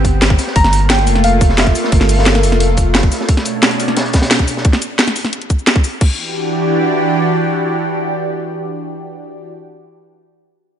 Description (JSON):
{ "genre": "liquid drum and bass", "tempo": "176 BPM", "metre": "4/4", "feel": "straight", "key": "unclear", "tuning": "A4 = 440 Hz", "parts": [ { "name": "lush unison pad", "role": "sustained chords", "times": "0.0-9.5 s", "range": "B2 to G4", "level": "-17 LUFS", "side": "equal", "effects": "chorus, phaser, sidechain pumping" }, { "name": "warm sub bass", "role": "bass", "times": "0.0-3.1 s", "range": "F1 to G1", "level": "-14 LUFS", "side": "equal", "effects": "tube saturation" }, { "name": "crunchy breakbeat drum kit", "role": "drums", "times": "0.0-4.7 s", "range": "hi-hat, snare drum", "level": "-22 LUFS", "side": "equal", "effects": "high-pass filter on hats, high-pass filter on snare, high-pass filter on room" }, { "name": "drum and bass drum kit", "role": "drums", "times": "0.0-6.1 s", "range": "cabasa, crash cymbal, hi-hat, snare drum", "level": "-16 LUFS", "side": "equal", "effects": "overdrive" }, { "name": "electronic kick drum", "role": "drums", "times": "0.0-6.1 s", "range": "none", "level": "-13 LUFS", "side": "equal", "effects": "overdrive" }, { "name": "soft round pluck", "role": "melody", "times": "0.6-1.9 s", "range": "E5 to Bb5", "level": "-18 LUFS", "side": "right 2 dB", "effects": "chorus, analog delay" } ], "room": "light reverb", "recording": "nothing above 10.6 kHz", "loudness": "-12 LUFS", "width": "side -9 dB against mid", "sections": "0.0-6.0 A section; 6.0-8.7 B section", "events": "drop 0.0-6.0", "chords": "0.0 Am7 (rootless); 0.6 Gm7; 3.3 Bm7; 6.0 Em7", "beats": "0.22 | 0.56 0.90 1.24 1.58 | 1.92 2.26 2.60 2.95 | 3.29 3.63 3.97 4.31 | 4.65 4.99 5.33 5.67 | 6.01 6.36 6.70 7.04 | 7.38 7.72 8.06 8.40" }